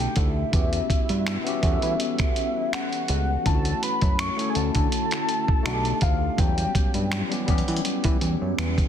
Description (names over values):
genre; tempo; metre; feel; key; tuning
contemporary R&B; 82 BPM; 4/4; swing 54% on 16ths; E dorian; A4 = 441 Hz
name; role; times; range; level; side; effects
warm velvety synth lead; melody; 0.0-7.5 s; E5 to C#6; -28 LUFS; equal; chorus, tremolo, tape echo
tine electric piano; accompaniment; 0.0-8.9 s; F#3 to A4; -30 LUFS; left 4 dB; medium stereo tremolo
glassy FM pad; sustained chords; 0.0-8.9 s; D3 to G5; -32 LUFS; left 2 dB; ensemble chorus, built-in reverb, phaser
fat analog bass; bass; 0.0-8.9 s; B1 to E3; -26 LUFS; equal; none
dusty soul sampler-style drum kit; drums; 0.0-8.9 s; finger snaps, hi-hat, kick drum; -25 LUFS; equal; soft clipping on snare
room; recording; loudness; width
digital ambience; dense, heavily limited modern master; -21 LUFS; side -9 dB against mid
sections
0.0-8.9 A section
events
none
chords
0.0 B7alt; 0.5 Em69; 3.5 Dmaj9; 5.7 B7alt; 6.4 Em69